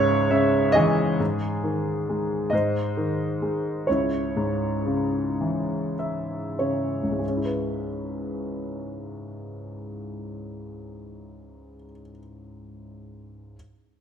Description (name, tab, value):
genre	classical, lyrical solo piano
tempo	30-45 BPM (dotted quarters)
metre	6/8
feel	rubato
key	C# minor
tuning	A4 = 440 Hz
part	clear grand piano	solo	0.0-13.6 s	C#2 to E5	-24 LUFS	equal	none
room	moderate scoring stage reverb, RT60 1.8 s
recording	none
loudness	-23 LUFS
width	side -8 dB against mid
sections	0.0-1.2 A section; 1.2-7.2 B section; 7.2-11.0 C section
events	grand piano fill 0.0-1.2, 5.4-7.2; slowing down 1.2-7.2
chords	0.0 C#m7; 1.2 G#5; 2.5 G#; 3.9 C#m; 7.2 C#m7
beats	| 1.20 2.53 | 3.88 5.40 | 7.23 9.15